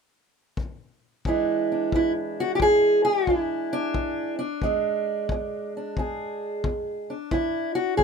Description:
acoustic country blues, solo or duo; 89 BPM; 4/4; swing 65% on 8ths; E mixolydian; A4 = 442 Hz
kick drum; drums; 0.6-8.0 s; -30 LUFS; left 3 dB
fingerpicked steel-string acoustic guitar; melody; 1.3-8.0 s; E2 to G#4; -22 LUFS; right 1 dB
moderate booth ambience, RT60 0.2 s; minimal, uncompressed stereo recording; -23 LUFS; side -6 dB against mid
0.0-1.2 A section; 1.2-8.0 B section
0.0 N.C.; 1.2 E7
0.57 | 1.25 1.92 2.60 3.27 | 3.95 4.62 5.30 5.97 | 6.65 7.32 8.00

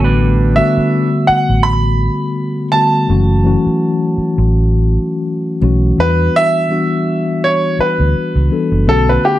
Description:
R&B, neo-soul; 83 BPM; 4/4; swing 57% on 16ths; A4 = 440 Hz
electric guitar through a small old amp; second line; 0.0-1.1 s; D4 to B4; -21 LUFS; right 5 dB
mellow tine electric piano; accompaniment; 0.0-9.4 s; D3 to A4; -16 LUFS; left 2 dB; slow stereo tremolo
vintage muted fingered electric bass; bass; 0.0-9.2 s; F#1 to E2; -13 LUFS; equal
clear grand piano; melody; 0.6-9.4 s; G4 to B5; -16 LUFS; right 1 dB; slapback echo
moderate studio reverb, RT60 0.7 s; -11 LUFS; side -14 dB against mid
0.0-6.0 A section; 6.0-9.4 B section
grand piano solo 6.0-9.4
0.0 A13sus4; 3.1 F#m7; 6.0 Em9; 8.9 Bm9
| 0.19 0.92 1.64 2.36 | 3.08 3.81 4.53 5.25 | 5.98 6.70 7.42 8.14 | 8.87

